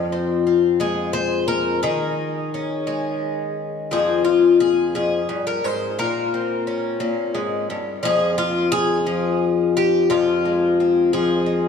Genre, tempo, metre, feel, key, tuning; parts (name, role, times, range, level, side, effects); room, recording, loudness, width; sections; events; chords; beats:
folk, solo fingerstyle acoustic guitar; 58 BPM (dotted quarters); 6/8; straight; F minor; A4 = 439 Hz
picked twelve-string acoustic guitar; solo; 0.0-11.7 s; F2 to C5; -18 LUFS; left 3 dB; wide subtle chorus, analog delay
wet plate reverb, RT60 2.8 s; dreamy mix soaked in reverb, small room ambience; -18 LUFS; side -6 dB against mid
0.0-11.7 A section
0.0 Fm; 1.8 Eb7sus4; 3.9 Fm; 6.0 Bbmadd9; 8.0 N.C.; 10.1 Fm
0.81 | 1.84 2.88 | 3.92 4.95 | 5.98 7.01 | 8.04 9.06 | 10.08 11.11